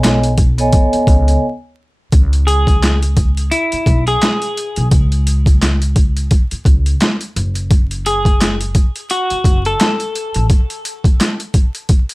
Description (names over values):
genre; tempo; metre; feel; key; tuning
hip hop, boom-bap hip-hop; 86 BPM; 4/4; swing 58% on 16ths; C# minor; A4 = 440 Hz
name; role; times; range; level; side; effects
vibraphone with soft mallets; accompaniment; 0.0-1.4 s; B3 to G#5; -16 LUFS; right 1 dB; cassette tape, high-pass filter, low-pass filter
upright bass; bass; 0.0-10.5 s; F#1 to C#2; -16 LUFS; equal; none
boom bap sampler-style drum kit; drums; 0.0-12.1 s; handclaps, hi-hat, kick drum, snare drum; -13 LUFS; equal; overdrive
clean electric guitar; melody; 2.5-10.5 s; E4 to A4; -19 LUFS; left 1 dB; high-pass filter, low-pass filter, digital delay
room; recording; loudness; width
little or no reverb; vinyl crackle; -12 LUFS; side -21 dB against mid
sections
0.0-2.1 A section; 2.1-12.1 B section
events
break 1.4-2.1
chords
0.0 B13; 2.1 C#5; 7.4 F#m; 10.5 N.C.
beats
0.03 0.73 1.43 | 2.12 2.82 3.52 4.22 | 4.92 5.61 6.31 7.01 | 7.71 8.40 9.10 9.80 | 10.50 11.19 11.89